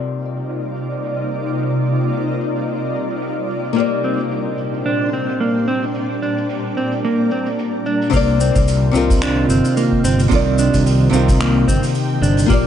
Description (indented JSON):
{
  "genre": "sunset chillout",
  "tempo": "110 BPM",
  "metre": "4/4",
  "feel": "swing 56% on 16ths",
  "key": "C minor",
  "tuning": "A4 = 438 Hz",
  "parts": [
    { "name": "nylon-string guitar", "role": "accompaniment", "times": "0.0-12.7 s", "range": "C3 to D5", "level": "-20 LUFS", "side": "moving between left 8 dB and right 5 dB", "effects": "auto-pan, digital delay" },
    { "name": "shimmering ambient pad", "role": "sustained chords", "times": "0.1-12.7 s", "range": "Bb2 to D5", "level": "-21 LUFS", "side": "equal", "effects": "chorus, built-in reverb" },
    { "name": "soft brush drum kit", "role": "drums", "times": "0.2-12.6 s", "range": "cabasa, finger snaps, hi-hat", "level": "-31 LUFS", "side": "equal", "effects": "low-pass filter on hats, low-pass filter on cymbals, low-pass filter on perc, low-pass filter on snare, low-pass filter on room" },
    { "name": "mellow electric guitar", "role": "arpeggios", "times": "3.8-12.7 s", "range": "Bb3 to D4", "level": "-21 LUFS", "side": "right 2 dB", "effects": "digital delay" },
    { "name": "fretless electric bass", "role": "bass", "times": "8.1-12.7 s", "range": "G1 to C2", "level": "-18 LUFS", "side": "equal", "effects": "lush chorus" },
    { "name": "electronic kick drum", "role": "drums", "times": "8.1-12.6 s", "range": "none", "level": "-18 LUFS", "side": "equal", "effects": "none" }
  ],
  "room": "light reverb, studio reverb",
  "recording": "nothing above 10.8 kHz",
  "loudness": "-15 LUFS",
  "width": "side -9 dB against mid",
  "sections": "0.0-8.1 A section; 8.1-12.7 B section",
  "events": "none",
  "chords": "0.0 Cm11; 3.8 Bb69; 8.1 Cm11",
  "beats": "0.50 1.04 | 1.59 2.13 2.68 3.22 | 3.77 4.31 4.86 5.41 | 5.95 6.50 7.04 7.59 | 8.13 8.68 9.22 9.77 | 10.31 10.86 11.40 11.95 | 12.50"
}